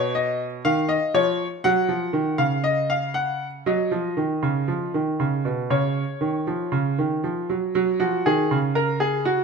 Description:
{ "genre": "classical, baroque-style two-part invention for grand piano", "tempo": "59 BPM", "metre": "4/4", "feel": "straight", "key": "unclear", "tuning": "A4 = 440 Hz", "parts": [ { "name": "clear baby grand piano", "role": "solo", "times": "0.0-9.4 s", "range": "B2 to F#5", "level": "-21 LUFS", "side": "right 1 dB", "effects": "none" } ], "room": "wet stone room reverb, RT60 1.2 s", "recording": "none", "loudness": "-21 LUFS", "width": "side -5 dB against mid", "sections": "0.0-7.7 A section; 7.7-9.4 B section", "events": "none", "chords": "0.0 B; 5.7 C#; 7.7 F#", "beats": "0.63 1.63 2.64 | 3.67 4.70 5.71 6.73 | 7.75 8.76" }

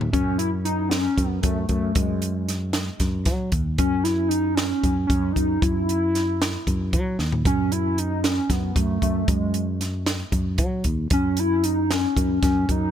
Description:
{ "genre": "progressive instrumental, band music in an uneven meter", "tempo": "229 BPM (eighths)", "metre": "7/8", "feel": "straight", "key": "F# dorian", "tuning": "A4 = 440 Hz", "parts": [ { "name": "sustaining fretless electric bass", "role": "bass", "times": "0.0-12.9 s", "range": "D#2 to F#3", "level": "-25 LUFS", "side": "equal", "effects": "none" }, { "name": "compact cocktail drum kit", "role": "drums", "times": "0.0-12.8 s", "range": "hi-hat, kick drum, snare drum, toms", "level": "-25 LUFS", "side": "equal", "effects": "none" }, { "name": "hollow square lead", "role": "melody", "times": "0.1-12.9 s", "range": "G#3 to E4", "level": "-24 LUFS", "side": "equal", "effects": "chorus, tape echo" } ], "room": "little or no reverb", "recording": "none", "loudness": "-20 LUFS", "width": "side -9 dB against mid", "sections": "0.1-12.9 A section", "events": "drum fill 7.2", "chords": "0.1 F#5; 2.0 D#madd11; 3.8 F#5; 5.6 D#m; 7.5 F#m; 9.3 D#madd11; 11.1 F#5", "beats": "| 0.13 0.39 0.65 0.91 1.17 1.44 1.70 | 1.96 2.22 2.48 2.74 3.00 3.27 3.53 | 3.79 4.05 4.31 4.57 4.83 5.10 5.36 | 5.62 5.88 6.14 6.40 6.67 6.93 7.19 | 7.45 7.71 7.97 8.24 8.50 8.76 9.02 | 9.28 9.54 9.81 10.07 10.33 10.59 10.86 | 11.12 11.38 11.64 11.90 12.17 12.43 12.69" }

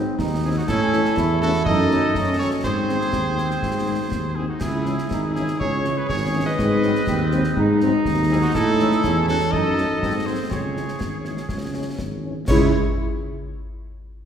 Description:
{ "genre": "military-style march for wind band", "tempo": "122 BPM", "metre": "2/4", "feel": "straight", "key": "C# minor", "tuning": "A4 = 440 Hz", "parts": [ { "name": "warm cornet", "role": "melody", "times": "0.0-12.7 s", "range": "F#4 to D#5", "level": "-26 LUFS", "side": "right 1 dB", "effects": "none" }, { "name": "warm woodwind section", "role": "second line", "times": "0.0-12.7 s", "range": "D#4 to C#5", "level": "-29 LUFS", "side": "left 1 dB", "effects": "none" }, { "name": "mellow French horn section", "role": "accompaniment", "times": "0.0-12.7 s", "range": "D#3 to E4", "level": "-29 LUFS", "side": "left 2 dB", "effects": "none" }, { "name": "warm trombone section", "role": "sustained chords", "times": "0.0-12.7 s", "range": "G#3 to E4", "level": "-27 LUFS", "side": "right 2 dB", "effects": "none" }, { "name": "dark tuba", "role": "bass", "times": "0.0-12.7 s", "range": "G#1 to A2", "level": "-22 LUFS", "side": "right 1 dB", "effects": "none" }, { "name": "concert snare drum, concert bass drum and clash cymbals", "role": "drums", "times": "0.2-12.8 s", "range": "none", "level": "-29 LUFS", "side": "left 1 dB", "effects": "none" } ], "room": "wet scoring stage reverb, RT60 1.9 s", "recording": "heard from further back in the room", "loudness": "-19 LUFS", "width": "side -8 dB against mid", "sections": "0.0-12.5 A section", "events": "none", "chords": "0.0 G#7; 0.7 A; 1.7 D#m7b5/F#; 2.6 G#; 4.6 C#m; 6.6 G#7; 8.5 Amaj7; 9.5 D#m7b5/F#; 10.0 G#7; 10.5 C#m", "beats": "0.19 | 0.68 1.17 | 1.66 2.15 | 2.64 3.13 | 3.63 4.12 | 4.61 5.10 | 5.59 6.09 | 6.58 7.07 | 7.56 8.05 | 8.54 9.04 | 9.53 10.02 | 10.51 11.00 | 11.50 11.99 | 12.48" }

